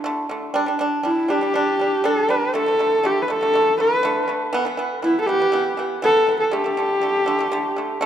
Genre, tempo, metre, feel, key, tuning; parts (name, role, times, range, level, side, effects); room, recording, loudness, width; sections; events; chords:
mongolian traditional, Mongolian folk; 120 BPM; 4/4; straight; A4 = 440 Hz
pipa; arpeggios; 0.0-8.1 s; D3 to D4; -23 LUFS; right 2 dB
warm horsehead fiddle; melody; 1.0-8.0 s; E4 to B4; -19 LUFS; equal; tape echo
moderate scoring stage reverb, RT60 2.0 s; close, detailed microphones; -18 LUFS; side -10 dB against mid
0.0-8.1 A section
0.0 D5; 0.5 G5; 2.5 D5; 4.5 E5; 6.5 D5